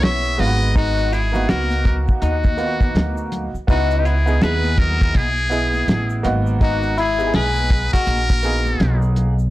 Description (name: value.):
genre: hip hop, jazz-hop.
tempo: 82 BPM.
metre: 4/4.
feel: swing 61% on 16ths.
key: unclear.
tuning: A4 = 440 Hz.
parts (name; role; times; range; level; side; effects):
trumpet with metal mute; melody; 0.0-9.0 s; F#4 to E5; -23 LUFS; equal; plate reverb.
semi-hollow electric guitar; second line; 0.0-9.0 s; D#4 to C#5; -25 LUFS; left 5 dB; lush chorus, slapback echo, plate reverb.
clear upright piano; accompaniment; 0.0-9.3 s; G#3 to D#5; -25 LUFS; right 3 dB; plate reverb.
upright bass; bass; 0.0-9.5 s; G#1 to D#2; -20 LUFS; equal; transformer saturation.
cloth-damped thuddy drum kit; drums; 0.0-9.4 s; hi-hat, kick drum, snare drum; -18 LUFS; equal; none.
egg shaker and congas; percussion; 0.0-9.5 s; none; -33 LUFS; left 5 dB; none.
room: light reverb.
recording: blown-out, overdriven recording, overdrive.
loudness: -16 LUFS.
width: side -16 dB against mid.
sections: 0.0-9.5 A section.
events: none.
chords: 0.4 G#m9; 3.7 C#m11; 6.2 G#m9.